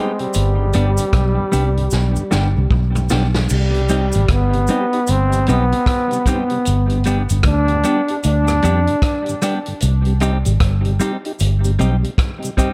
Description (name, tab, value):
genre	roots reggae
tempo	76 BPM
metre	4/4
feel	swing 61% on 16ths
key	C harmonic minor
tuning	A4 = 440 Hz
part	breathy trombone	melody	0.0-9.4 s	G3 to D4	-23 LUFS	equal	tape echo
part	mellow tonewheel organ	accompaniment	0.0-12.7 s	G2 to G4	-30 LUFS	equal	chorus vibrato, slow rotary speaker, tape echo
part	semi-hollow electric guitar	accompaniment	0.0-12.7 s	G3 to G4	-27 LUFS	equal	tape echo
part	vintage drum kit	drums	0.2-12.7 s	crash cymbal, hi-hat, kick drum, rim click, snare drum, toms	-24 LUFS	equal	none
part	cabasa	percussion	0.3-12.7 s	none	-33 LUFS	equal	none
part	vintage muted fingered electric bass	bass	0.4-12.0 s	G1 to F2	-19 LUFS	equal	none
room	light reverb, small room ambience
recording	echo-heavy mix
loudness	-17 LUFS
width	mono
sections	0.0-3.5 A section; 3.5-12.7 B section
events	drum fill 1.9-3.5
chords	0.3 G; 3.5 Cm; 6.7 G; 9.8 Cm